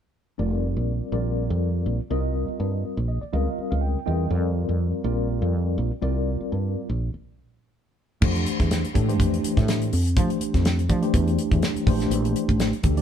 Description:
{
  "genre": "electric jazz fusion",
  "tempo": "123 BPM",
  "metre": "4/4",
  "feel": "swing 55% on 16ths",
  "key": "F major from 8.2 s",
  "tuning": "A4 = 440 Hz",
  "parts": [
    { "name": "mellow tine electric piano", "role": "accompaniment", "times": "0.4-13.0 s", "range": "E3 to G5", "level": "-27 LUFS", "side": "left 1 dB", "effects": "medium stereo tremolo" },
    { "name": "woody fretless electric bass", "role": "bass", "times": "0.4-13.0 s", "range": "F1 to F3", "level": "-24 LUFS", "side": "equal", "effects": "none" },
    { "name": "damped 70s drum kit", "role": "drums", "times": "8.2-13.0 s", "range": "crash cymbal, hi-hat, kick drum, snare drum", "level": "-24 LUFS", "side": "equal", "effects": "none" }
  ],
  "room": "light reverb",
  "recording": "band playing live in one room",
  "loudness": "-21 LUFS",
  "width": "side -9 dB against mid",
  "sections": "0.4-8.2 A section; 8.2-13.0 B section",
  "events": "tine electric piano fill 2.8-4.3; stop 7.2-8.2",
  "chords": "0.4 Fsus24; 1.1 Bbadd9; 2.1 Cm7; 3.3 Bbm6/Db; 4.3 Fsus24; 5.0 Bbadd9; 7.2 N.C.; 8.2 Fmaj9; 11.9 Bbmaj9",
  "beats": "| 0.39 0.88 1.37 1.86 | 2.35 2.84 3.33 3.82 | 4.31 4.80 5.29 5.78 | 6.27 6.76 7.24 7.73 | 8.22 8.71 9.19 9.68 | 10.17 10.65 11.14 11.62 | 12.11 12.60"
}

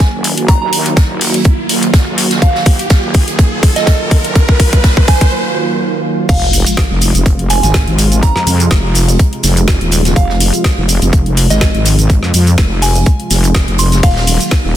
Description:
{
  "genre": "bass house",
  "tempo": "124 BPM",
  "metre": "4/4",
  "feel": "swing 55% on 16ths",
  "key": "F phrygian",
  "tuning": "A4 = 442 Hz",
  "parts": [
    { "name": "sweeping resonant pad", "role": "sustained chords", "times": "0.0-14.8 s", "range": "C3 to Gb4", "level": "-19 LUFS", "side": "right 1 dB", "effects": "chorus, sidechain pumping" },
    { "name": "wobble bass", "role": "bass", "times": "0.0-14.8 s", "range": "Eb1 to F2", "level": "-14 LUFS", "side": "equal", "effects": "chorus, tube saturation, sidechain pumping, high-pass filter" },
    { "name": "electronic kick drum", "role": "drums", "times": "0.0-14.6 s", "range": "none", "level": "-9 LUFS", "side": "equal", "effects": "small room ambience" },
    { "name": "garage drum kit", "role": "drums", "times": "0.0-14.6 s", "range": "cabasa, crash cymbal, hi-hat, ride cymbal, snare drum", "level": "-17 LUFS", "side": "left 1 dB", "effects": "small room ambience" },
    { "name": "unplugged drum kit", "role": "drums", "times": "0.0-14.6 s", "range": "hi-hat, snare drum", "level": "-24 LUFS", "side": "right 3 dB", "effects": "sidechain pumping on hats, high-pass filter on hats, small room ambience, high-pass filter on snare, high-pass filter on room" },
    { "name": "riser and sub drop", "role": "sound effects", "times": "0.1-8.2 s", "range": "none", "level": "-20 LUFS", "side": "equal", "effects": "none" },
    { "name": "soft synth bell", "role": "melody", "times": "0.5-14.4 s", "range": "Eb5 to C6", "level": "-21 LUFS", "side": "right 2 dB", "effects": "chorus, tape echo" }
  ],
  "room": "digital ambience",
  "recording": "dense, heavily limited modern master",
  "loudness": "-9 LUFS",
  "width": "side -12 dB against mid",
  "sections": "0.0-6.3 A section; 6.3-14.8 B section",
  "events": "build-up 0.0-6.3; drum fill 0.0-5.3; filter sweep on analog synth pad 0.0-6.3; riser 0.1-5.3; break 5.3-6.3; drop 6.3-14.8; impact 6.3-8.2",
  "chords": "0.0 Ebm; 6.3 Fm; 14.0 Ebm",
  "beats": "0.00 | 0.48 0.97 1.45 1.94 | 2.42 2.90 3.39 3.87 | 4.36 4.84 5.32 5.81 | 6.29 6.78 7.26 7.74 | 8.23 8.71 9.19 9.68 | 10.16 10.65 11.13 11.61 | 12.10 12.58 13.06 13.55 | 14.03 14.52"
}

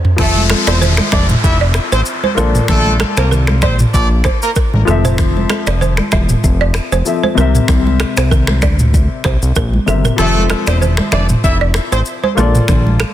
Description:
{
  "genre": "afrobeats",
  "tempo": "96 BPM",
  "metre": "4/4",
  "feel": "swing 55% on 16ths",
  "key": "F major",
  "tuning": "A4 = 436 Hz",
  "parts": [
    { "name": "warm baby grand piano", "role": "accompaniment", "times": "0.0-13.1 s", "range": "C3 to E5", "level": "-21 LUFS", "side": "left 6 dB", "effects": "none" },
    { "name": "afro-pop drum kit", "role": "drums", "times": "0.0-13.1 s", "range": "crash cymbal, finger snaps, kick drum, rim click, shaker, toms", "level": "-16 LUFS", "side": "equal", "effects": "soft clipping on snare" },
    { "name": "noise sweep and downlifter", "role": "sound effects", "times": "0.0-5.2 s", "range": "none", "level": "-22 LUFS", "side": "left 2 dB", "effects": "none" },
    { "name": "clear horn section", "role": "second line", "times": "0.2-4.5, 10.2-12.0 s", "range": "A3 to E5", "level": "-20 LUFS", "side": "equal", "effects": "ping-pong delay" },
    { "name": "fat analog bass", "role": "bass", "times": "0.2-13.0 s", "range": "E1 to D2", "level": "-14 LUFS", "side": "equal", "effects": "none" },
    { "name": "congas", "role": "percussion", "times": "0.2-13.1 s", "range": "none", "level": "-22 LUFS", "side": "right 3 dB", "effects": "none" },
    { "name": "balafon", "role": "riff", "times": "0.5-13.1 s", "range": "A4 to E5", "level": "-21 LUFS", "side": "right 7 dB", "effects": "ping-pong delay" }
  ],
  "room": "studio reverb",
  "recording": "dense, heavily limited modern master",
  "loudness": "-11 LUFS",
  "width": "side -12 dB against mid",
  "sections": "0.2-13.1 A section",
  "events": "drum fill 0.0; noise sweep 0.0; kick muted 10.2-11.4",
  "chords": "0.2 Fmaj7; 2.4 Bbmaj7; 4.9 Fmaj7; 7.4 C7; 10.2 Fmaj7; 12.4 Bbmaj7",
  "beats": "| 0.19 0.81 1.44 2.06 | 2.69 3.31 3.94 4.56 | 5.19 5.81 6.44 7.06 | 7.69 8.31 8.94 9.56 | 10.19 10.81 11.44 12.06 | 12.69"
}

